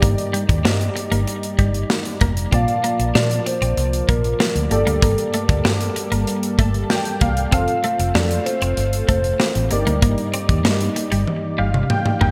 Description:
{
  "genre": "1980s-style pop",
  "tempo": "96 BPM",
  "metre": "4/4",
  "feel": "straight",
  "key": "unclear",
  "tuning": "A4 = 443 Hz",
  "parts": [
    { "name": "hollow clarinet-like synth lead", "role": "melody", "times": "0.0-10.6 s", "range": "G4 to F5", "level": "-26 LUFS", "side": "equal", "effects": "chorus, digital delay" },
    { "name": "warm analog keys", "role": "accompaniment", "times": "0.0-12.3 s", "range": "G2 to A5", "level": "-29 LUFS", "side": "equal", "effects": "chorus" },
    { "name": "lush unison pad", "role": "sustained chords", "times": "0.0-12.3 s", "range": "F3 to D5", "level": "-30 LUFS", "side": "equal", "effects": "chorus" },
    { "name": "twelve-string electric guitar", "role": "riff", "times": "0.0-12.3 s", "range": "G3 to D4", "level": "-29 LUFS", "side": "equal", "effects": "subtle chorus, digital delay" },
    { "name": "vintage muted fingered electric bass", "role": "bass", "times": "0.0-12.3 s", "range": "F1 to Bb2", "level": "-23 LUFS", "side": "equal", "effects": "none" },
    { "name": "modern studio drum kit", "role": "drums", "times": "0.0-12.3 s", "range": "hi-hat, kick drum, snare drum, toms", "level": "-23 LUFS", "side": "equal", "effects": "gated reverb" }
  ],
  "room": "moderate plate reverb, RT60 2.8 s",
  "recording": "bright 1980s-style digital production",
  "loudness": "-19 LUFS",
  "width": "mono",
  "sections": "0.0-12.3 A section",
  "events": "synth keys fill 6.3-7.5, 11.3-12.3; drum fill 11.3-12.3",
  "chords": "0.0 Ebmaj7/G; 2.5 Bbmaj7; 4.7 Gmadd9; 7.5 F; 9.7 Ebmaj7/G"
}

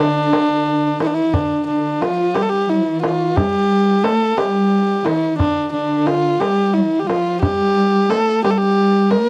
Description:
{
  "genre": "Persian modal ensemble",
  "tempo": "59 BPM (dotted quarters)",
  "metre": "6/8",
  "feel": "straight",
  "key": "D dastgah shur",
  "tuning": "A4 = 445 Hz",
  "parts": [
    { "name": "warm kamancheh", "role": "melody", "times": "0.0-9.3 s", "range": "D4 to Bb4", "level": "-19 LUFS", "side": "equal", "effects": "none" },
    { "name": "dark studio cello section", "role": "second line", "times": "0.0-9.3 s", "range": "D3 to Bb3", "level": "-22 LUFS", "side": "equal", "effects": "none" },
    { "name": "tombak", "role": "percussion", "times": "0.3-9.3 s", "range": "none", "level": "-24 LUFS", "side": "equal", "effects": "none" }
  ],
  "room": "little or no reverb",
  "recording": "dry, close 1970s-style studio recording",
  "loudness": "-17 LUFS",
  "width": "mono",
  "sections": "0.0-1.3 A section; 1.3-9.3 B section",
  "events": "none",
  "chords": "none"
}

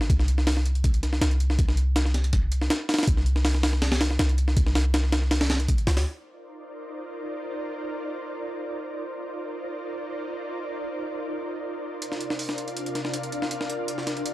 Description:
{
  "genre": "drum and bass, jungle",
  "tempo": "161 BPM",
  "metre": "4/4",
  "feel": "straight",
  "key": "C minor",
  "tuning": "A4 = 441 Hz",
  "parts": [
    { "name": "breakbeat sampler-style drum kit", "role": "drums", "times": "0.0-6.1, 12.0-14.3 s", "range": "hi-hat, kick drum, snare drum", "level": "-25 LUFS", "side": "equal", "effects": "none" },
    { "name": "warm 808-style bass", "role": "bass", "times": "0.1-6.0 s", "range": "C2 to D2", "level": "-23 LUFS", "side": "equal", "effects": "none" },
    { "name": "ethereal airy pad", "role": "sustained chords", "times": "6.4-14.3 s", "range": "C3 to F5", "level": "-31 LUFS", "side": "equal", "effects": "ensemble chorus, built-in reverb" }
  ],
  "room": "little or no reverb",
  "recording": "dry, gritty hardware recording, transformer saturation",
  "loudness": "-24 LUFS",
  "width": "side -17 dB against mid",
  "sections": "0.0-6.1 A section; 6.1-14.3 B section",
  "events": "drop 0.0-6.1",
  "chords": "0.1 N.C.; 6.1 Cm11; 12.0 Bb/C"
}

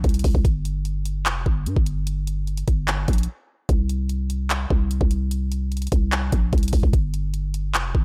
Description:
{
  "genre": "hip hop, trap",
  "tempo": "148 BPM",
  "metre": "4/4",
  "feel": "half-time",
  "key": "unclear",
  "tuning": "A4 = 440 Hz",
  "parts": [
    { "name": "growling 808-style bass", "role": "bass", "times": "0.0-8.0 s", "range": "F1 to G2", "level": "-26 LUFS", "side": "equal", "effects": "none" },
    { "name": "trap drum kit", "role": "drums", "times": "0.0-8.0 s", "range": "handclaps, hi-hat, kick drum", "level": "-24 LUFS", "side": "equal", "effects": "none" }
  ],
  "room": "little or no reverb",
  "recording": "none",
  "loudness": "-23 LUFS",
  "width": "mono",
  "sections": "0.0-8.0 A section",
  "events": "break 3.3-3.7",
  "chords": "none"
}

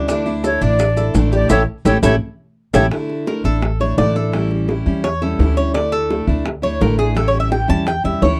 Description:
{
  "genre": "latin, Cuban son and guajira",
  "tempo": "170 BPM",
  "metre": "4/4",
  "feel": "straight",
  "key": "unclear",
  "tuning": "A4 = 439 Hz",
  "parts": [
    { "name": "picked steel-string acoustic guitar", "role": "accompaniment", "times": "0.0-8.4 s", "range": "D3 to E4", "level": "-24 LUFS", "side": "equal", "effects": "none" },
    { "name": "Cuban tres", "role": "arpeggios", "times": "0.0-8.4 s", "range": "D4 to A5", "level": "-23 LUFS", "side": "equal", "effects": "none" },
    { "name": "upright bass", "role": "bass", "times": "0.0-8.4 s", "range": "A1 to E2", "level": "-21 LUFS", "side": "equal", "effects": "none" },
    { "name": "bongos", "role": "percussion", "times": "0.1-8.4 s", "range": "none", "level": "-25 LUFS", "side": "equal", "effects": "none" },
    { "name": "maracas", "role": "percussion", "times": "0.1-2.8 s", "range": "none", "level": "-37 LUFS", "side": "equal", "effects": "none" },
    { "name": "breathy silver concert flute", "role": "melody", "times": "0.5-2.9 s", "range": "C#5 to D5", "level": "-21 LUFS", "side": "equal", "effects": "none" }
  ],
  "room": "little or no reverb",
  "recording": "dry, close 1970s-style studio recording",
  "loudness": "-17 LUFS",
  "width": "mono",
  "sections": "0.0-2.9 A section; 2.9-8.4 B section",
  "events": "band accent 1.5-2.9; drum fill 1.9-2.9; Cuban tres solo 2.9-8.4",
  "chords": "0.1 Dsus2; 1.5 A7; 2.9 Dsus2; 4.3 A7; 5.8 Dsus2; 7.2 A7"
}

